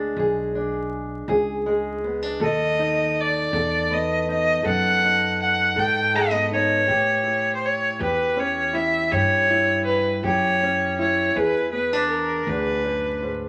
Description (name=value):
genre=acoustic country blues, solo or duo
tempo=54 BPM (dotted quarters)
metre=12/8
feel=straight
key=unclear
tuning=A4 = 440 Hz
part: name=fingerpicked steel-string acoustic guitar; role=accompaniment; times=0.0-13.5 s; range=E2 to A4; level=-28 LUFS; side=equal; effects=none
part: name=upright bass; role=bass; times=0.0-13.5 s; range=B1 to A2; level=-32 LUFS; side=equal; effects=none
part: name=rich fiddle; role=melody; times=2.4-13.3 s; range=A#4 to G5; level=-23 LUFS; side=equal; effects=none
room=moderate large studio reverb, RT60 1.2 s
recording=vinyl crackle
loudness=-22 LUFS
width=mono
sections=0.0-13.5 A section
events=none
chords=0.0 E7; 2.4 B7; 6.9 A7; 11.4 E7